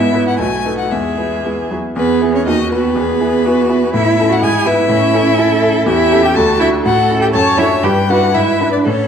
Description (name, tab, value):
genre	quick classical-period movement for piano quartet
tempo	113-126 BPM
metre	2/4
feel	rubato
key	E major, D major from 5.9 s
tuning	A4 = 440 Hz
part	rich violin	melody	0.0-9.1 s	B4 to A5	-17 LUFS	left 7 dB	none
part	rich cello	second line	0.0-9.1 s	B3 to A4	-17 LUFS	right 6 dB	none
part	clear grand piano	accompaniment	0.0-9.1 s	B1 to B4	-17 LUFS	left 1 dB	none
part	rich viola	accompaniment	0.0-9.1 s	F#3 to C#5	-19 LUFS	right 2 dB	none
room	moderate concert hall reverb, RT60 1.9 s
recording	dark, warm production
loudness	-11 LUFS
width	side -7 dB against mid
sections	0.0-2.0 A section; 2.0-9.1 A section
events	none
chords	0.4 B7; 0.9 E; 2.5 B/D#; 3.0 E; 3.9 A; 4.4 E/G#; 4.9 A; 5.9 A7/E; 6.4 D; 6.8 A; 7.3 D/F#; 7.8 Em7/G; 8.3 E7/G#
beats	0.40 | 0.92 1.45 | 1.97 2.46 | 2.96 3.46 | 3.94 4.42 | 4.90 5.38 | 5.87 6.35 | 6.85 7.34 | 7.83 8.34 | 8.86